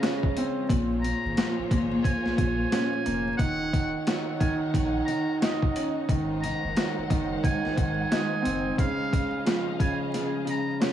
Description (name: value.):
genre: hip hop, boom-bap hip-hop.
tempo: 89 BPM.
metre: 4/4.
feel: swing 61% on 16ths.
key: Bb minor.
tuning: A4 = 440 Hz.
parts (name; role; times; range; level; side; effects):
warm upright piano; accompaniment; 0.0-10.9 s; Bb2 to Eb4; -28 LUFS; right 1 dB; cassette tape, high-pass filter, low-pass filter, tape echo.
warm studio string section; sustained chords; 0.0-10.9 s; Eb3 to Gb5; -35 LUFS; left 2 dB; high-pass filter, low-pass filter.
boom bap sampler-style drum kit; drums; 0.0-10.9 s; hi-hat, kick drum, snare drum; -27 LUFS; equal; none.
soft dub sub bass; bass; 0.7-8.7 s; Eb1 to Bb1; -34 LUFS; equal; none.
trumpet with metal mute; melody; 1.0-10.8 s; F5 to Bb5; -34 LUFS; right 1 dB; high-pass filter, low-pass filter, tape echo.
room: light reverb, small room ambience.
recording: echo-heavy mix, vinyl crackle.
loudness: -24 LUFS.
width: side -10 dB against mid.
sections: 0.0-10.9 A section.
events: kick muted 10.1-10.9.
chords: 0.0 Dbmaj7; 0.7 Bbm7; 3.4 Ebm7; 6.1 Ab7; 8.8 Dbmaj7.